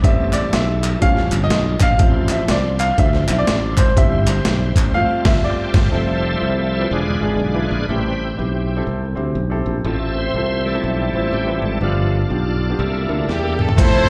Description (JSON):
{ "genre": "uptempo gospel", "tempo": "122 BPM", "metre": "4/4", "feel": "swing 61% on 8ths", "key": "C major", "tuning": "A4 = 442 Hz", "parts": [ { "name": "warm baby grand piano", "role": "accompaniment", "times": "0.0-14.1 s", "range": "G2 to E#5", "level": "-25 LUFS", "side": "equal", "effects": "slapback echo" }, { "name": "bright tonewheel organ", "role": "sustained chords", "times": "0.0-14.1 s", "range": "C3 to E5", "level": "-27 LUFS", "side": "equal", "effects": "slow rotary speaker, overdrive, chorus vibrato" }, { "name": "modern bright fingered electric bass", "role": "bass", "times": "0.0-14.1 s", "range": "E1 to E2", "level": "-22 LUFS", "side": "equal", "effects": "none" }, { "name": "dusty soul sampler-style drum kit", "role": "drums", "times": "0.0-5.9, 13.3-13.9 s", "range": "crash cymbal, hi-hat, kick drum, snare drum, toms", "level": "-20 LUFS", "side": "equal", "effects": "overdrive" }, { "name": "group handclap", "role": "percussion", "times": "0.3-4.9 s", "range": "none", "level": "-32 LUFS", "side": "equal", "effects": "none" }, { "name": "rich studio string section", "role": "melody", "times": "13.3-14.1 s", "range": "E4 to C5", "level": "-21 LUFS", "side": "equal", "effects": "slapback echo" } ], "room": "light reverb, digital ambience", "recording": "live gig heard through the venue's PA, club reverb", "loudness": "-18 LUFS", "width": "mono", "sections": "0.0-5.9 A section; 5.9-13.8 B section", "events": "grand piano solo 0.0-5.9; band accent 4.9-5.9; tonewheel organ solo 5.9-13.8; drum fill 13.3-13.8", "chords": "0.0 Am7; 1.0 Aaug7; 2.0 Dm9/A; 4.0 C/G; 4.9 G9sus4; 5.9 Fmaj7; 6.9 E7b9; 7.9 Am7; 9.9 Fmaj7/A; 11.8 G7; 12.8 C13", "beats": "| 0.04 0.53 1.02 1.51 | 2.00 2.49 2.98 3.47 | 3.96 4.46 4.95 5.44 | 5.93 6.42 6.91 7.40 | 7.90 8.39 8.88 9.37 | 9.86 10.35 10.84 11.33 | 11.82 12.31 12.80 13.29 | 13.78" }